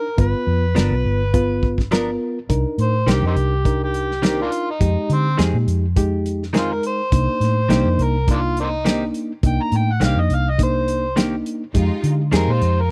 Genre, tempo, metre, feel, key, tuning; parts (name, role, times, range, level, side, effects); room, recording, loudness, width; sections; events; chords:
straight-eighth soul blues; 104 BPM; 4/4; straight; A4 = 440 Hz
overdriven harmonica; melody; 0.0-12.9 s; Bb3 to Bb5; -26 LUFS; equal
reed electric piano; accompaniment; 0.0-12.8 s; Ab3 to B4; -26 LUFS; equal
vintage muted fingered electric bass; bass; 0.2-12.9 s; G1 to D3; -22 LUFS; equal
warm soul drum kit; drums; 0.2-12.8 s; hi-hat, kick drum, snare drum; -22 LUFS; equal
direct-recorded clean electric guitar; stabs; 0.8-12.5 s; Eb3 to A#4; -27 LUFS; equal
clear studio string section; sustained chords; 11.7-12.9 s; Ab3 to F4; -34 LUFS; equal
small room ambience; -19 LUFS; mono
0.0-2.5 A section; 2.5-12.9 B section
harmonica solo 2.5-12.9
0.2 G7#9; 2.5 Cm7; 4.8 Fm7; 7.1 Cm7; 11.7 Fm7